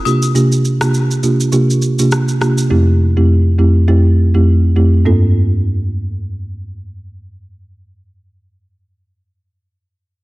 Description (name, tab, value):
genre	afrobeats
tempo	102 BPM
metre	4/4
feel	swing 58% on 16ths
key	G dorian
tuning	A4 = 440 Hz
part	folk marimba with soft mallets	accompaniment	0.0-8.9 s	F2 to A4	-11 LUFS	equal	none
part	electronic shaker and rim click	drums	0.1-2.7 s	none	-22 LUFS	equal	soft clipping on snare
room	light reverb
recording	dense, heavily limited modern master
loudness	-11 LUFS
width	side -19 dB against mid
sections	0.0-5.1 A section; 5.1-7.4 B section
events	none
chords	0.1 C7sus4; 2.7 Fmaj7; 5.1 Gm11